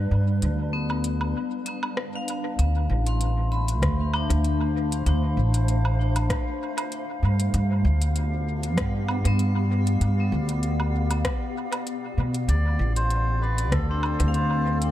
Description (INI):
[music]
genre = ambient dub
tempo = 97 BPM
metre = 4/4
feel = swing 54% on 16ths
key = D dorian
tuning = A4 = 445 Hz
[part]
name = granular cloud pad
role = sustained chords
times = 0.0-14.9 s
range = G3 to F5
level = -32 LUFS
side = right 1 dB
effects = built-in reverb
[part]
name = upright bass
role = bass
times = 0.0-14.9 s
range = A1 to B2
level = -22 LUFS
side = equal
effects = none
[part]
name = organic electronic drum kit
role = drums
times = 0.4-14.9 s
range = hi-hat, rim click, woodblock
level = -33 LUFS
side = equal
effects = overdrive, small room ambience, dub echo
[part]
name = vibraphone with hard mallets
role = arpeggios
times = 0.7-14.9 s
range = B3 to C6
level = -32 LUFS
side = left 5 dB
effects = tape echo
[part]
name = electronic kick drum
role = drums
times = 3.8-13.9 s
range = none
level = -29 LUFS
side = equal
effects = overdrive, small room ambience
[part]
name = melodica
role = melody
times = 12.5-14.8 s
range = A4 to D5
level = -29 LUFS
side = equal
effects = tape echo
[sound]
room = small room reverb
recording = echo-heavy mix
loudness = -22 LUFS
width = side -13 dB against mid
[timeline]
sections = 0.0-2.6 A section; 2.6-14.9 B section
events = break 1.4-2.6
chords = 0.0 G7; 2.6 Dm7; 7.5 G7; 12.5 Dm7